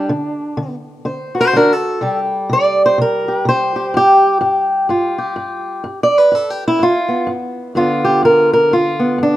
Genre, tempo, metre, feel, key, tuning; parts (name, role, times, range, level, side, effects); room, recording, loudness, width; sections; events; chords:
acoustic country blues, solo or duo; 125 BPM; 4/4; swing 60% on 8ths; G mixolydian; A4 = 439 Hz
fingerpicked steel-string acoustic guitar; solo; 0.0-9.4 s; G2 to D5; -13 LUFS; equal
light reverb, studio reverb; rough home demo mix; -12 LUFS; side -14 dB against mid
0.0-7.8 A section; 7.8-9.4 B section
steel-string acoustic guitar solo 0.0-7.8
0.1 D7; 2.0 C5; 3.9 G7